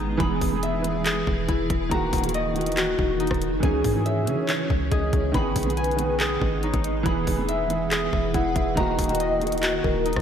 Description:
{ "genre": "hip hop, trap", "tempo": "140 BPM", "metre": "4/4", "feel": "half-time", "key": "unclear", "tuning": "A4 = 440 Hz", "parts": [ { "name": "dark concert grand piano", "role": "accompaniment", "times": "0.0-10.2 s", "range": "D#3 to G#4", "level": "-28 LUFS", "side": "right 5 dB", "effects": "analog chorus" }, { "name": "granular cloud pad", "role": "sustained chords", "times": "0.0-10.2 s", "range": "C#3 to B4", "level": "-31 LUFS", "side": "equal", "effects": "built-in reverb" }, { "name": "concert harp", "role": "arpeggios", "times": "0.0-10.2 s", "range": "D#4 to B5", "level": "-28 LUFS", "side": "left 3 dB", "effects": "analog delay" }, { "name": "warm 808-style bass", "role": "bass", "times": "0.0-10.2 s", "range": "D#1 to C#3", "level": "-29 LUFS", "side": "equal", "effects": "none" }, { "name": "trap drum kit", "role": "drums", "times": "0.2-10.2 s", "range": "handclaps, hi-hat, kick drum, rim click", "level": "-27 LUFS", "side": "equal", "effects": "none" }, { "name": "warm velvety synth lead", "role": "second line", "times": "3.6-10.2 s", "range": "G#4 to F#5", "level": "-29 LUFS", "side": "left 1 dB", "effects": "chorus, analog delay" } ], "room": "moderate lush hall reverb, RT60 2.0 s", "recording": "dreamy mix soaked in reverb", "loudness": "-21 LUFS", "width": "side -8 dB against mid", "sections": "0.0-10.2 A section", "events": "none", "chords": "0.2 E; 1.9 D#m; 3.6 C#m; 5.3 G#m; 7.1 E; 8.8 D#m" }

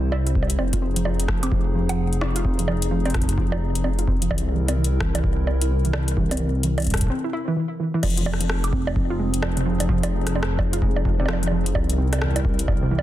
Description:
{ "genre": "IDM", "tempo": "129 BPM", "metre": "4/4", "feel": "swing 62% on 16ths", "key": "unclear", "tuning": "A4 = 441 Hz", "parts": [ { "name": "warbly tape-like pad", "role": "sustained chords", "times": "0.0-13.0 s", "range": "C3 to C5", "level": "-31 LUFS", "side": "left 2 dB", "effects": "chorus, built-in reverb, vintage 12-bit sampler grit, sidechain pumping" }, { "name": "dark detuned saw bass", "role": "bass", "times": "0.0-13.0 s", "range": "F1 to C2", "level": "-23 LUFS", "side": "equal", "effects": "none" }, { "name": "warbly dusty pluck", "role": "arpeggios", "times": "0.1-13.0 s", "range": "E2 to F4", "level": "-27 LUFS", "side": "right 2 dB", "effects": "chorus, digital delay" }, { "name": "electro analog drum machine", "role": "drums", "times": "0.1-13.0 s", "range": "bongos, crash cymbal, hi-hat, rim click", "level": "-29 LUFS", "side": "right 1 dB", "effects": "soft clipping on snare, ping-pong delay" }, { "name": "electronic kick drum", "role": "drums", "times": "0.4-12.8 s", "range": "none", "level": "-24 LUFS", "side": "equal", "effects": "none" } ], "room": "little or no reverb", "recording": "dense, heavily limited modern master", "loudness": "-20 LUFS", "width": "side -13 dB against mid", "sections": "0.0-8.0 A section; 8.0-13.0 B section", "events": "break 7.1-8.0", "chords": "0.0 C; 0.6 Fm7; 4.3 C7; 8.0 Fm7; 11.8 C7" }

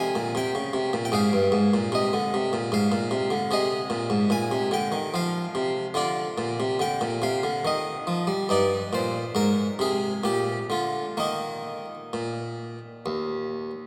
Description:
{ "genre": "classical, baroque-style suite movement for harpsichord", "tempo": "61-78 BPM", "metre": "3/4", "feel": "rubato", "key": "Eb major from 3.5 s", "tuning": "A4 = 437 Hz", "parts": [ { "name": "harpsichord", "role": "solo", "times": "0.0-13.7 s", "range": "Eb2 to Ab5", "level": "-26 LUFS", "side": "equal", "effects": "none" } ], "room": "wet church reverb, RT60 3.7 s", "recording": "none", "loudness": "-26 LUFS", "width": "mono", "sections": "0.0-13.9 A section", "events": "none", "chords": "0.3 C5; 1.1 Fm; 3.5 Ab; 5.2 F5; 6.0 Bb; 7.6 Eb; 8.5 Eb/G; 9.4 Abadd9; 10.2 Bb; 11.2 Eb5" }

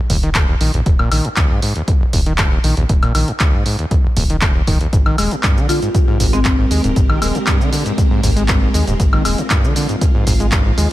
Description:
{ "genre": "acid house", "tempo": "118 BPM", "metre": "4/4", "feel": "straight", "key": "unclear", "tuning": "A4 = 440 Hz", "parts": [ { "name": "overdriven acid bass", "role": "riff", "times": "0.1-10.9 s", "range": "Eb1 to Ab3", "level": "-20 LUFS", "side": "equal", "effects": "distortion, ping-pong delay" }, { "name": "round analog bass", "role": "bass", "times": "0.1-10.9 s", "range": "Eb1 to Eb2", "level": "-19 LUFS", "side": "equal", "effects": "sidechain pumping" }, { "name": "electronic kick drum", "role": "drums", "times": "0.1-10.6 s", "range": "none", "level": "-16 LUFS", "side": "equal", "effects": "none" }, { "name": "punchy analog drum machine", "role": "drums", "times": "0.1-10.9 s", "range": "handclaps, hi-hat, shaker, woodblock", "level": "-21 LUFS", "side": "equal", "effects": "none" }, { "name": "string machine, full ensemble", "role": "sustained chords", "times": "4.9-10.9 s", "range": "Ab3 to Bb4", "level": "-24 LUFS", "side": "equal", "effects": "ensemble chorus, sidechain pumping" }, { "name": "buzzing marimba with hard mallets", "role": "melody", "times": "5.7-6.5 s", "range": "C4 to F4", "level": "-21 LUFS", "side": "left 2 dB", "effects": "ping-pong delay" } ], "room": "little or no reverb", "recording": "none", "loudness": "-13 LUFS", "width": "side -15 dB against mid", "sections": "0.0-10.9 A section", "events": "none", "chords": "0.0 Ebmaj7(no3); 4.9 Abmaj9" }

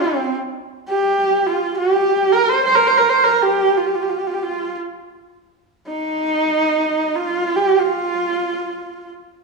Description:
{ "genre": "mongolian traditional, Mongolian folk", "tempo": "free time", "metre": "none", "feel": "none", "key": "unclear", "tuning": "A4 = 440 Hz", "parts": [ { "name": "clear horsehead fiddle", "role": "solo", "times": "0.0-9.1 s", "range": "C4 to C5", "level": "-16 LUFS", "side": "right 2 dB", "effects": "none" } ], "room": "wet large studio reverb, RT60 1.4 s", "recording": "band playing live in one room", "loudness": "-16 LUFS", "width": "side -2 dB against mid", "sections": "0.5-9.4 A section", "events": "none", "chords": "none" }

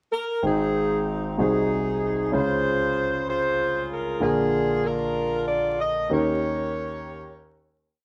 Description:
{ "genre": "gospel", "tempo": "64 BPM (dotted quarters)", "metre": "6/8", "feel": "straight", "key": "Ab major", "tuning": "A4 = 439 Hz", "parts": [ { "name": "mellow saxophone section", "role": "melody", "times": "0.1-7.7 s", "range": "C4 to Eb5", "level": "-27 LUFS", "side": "equal", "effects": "none" }, { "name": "warm concert grand piano", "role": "accompaniment", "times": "0.4-8.0 s", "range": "Ab1 to G5", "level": "-28 LUFS", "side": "equal", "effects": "none" } ], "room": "moderate plate reverb, RT60 2.9 s", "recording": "dark, warm production, vinyl crackle", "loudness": "-24 LUFS", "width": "mono", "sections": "0.0-0.4 pickup bar; 0.4-8.0 verse", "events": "fade-out 6.1-8.0", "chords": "0.4 Abmaj7; 1.4 Ab7/C; 2.3 Dbmaj7; 4.2 Bb7; 6.1 Eb7" }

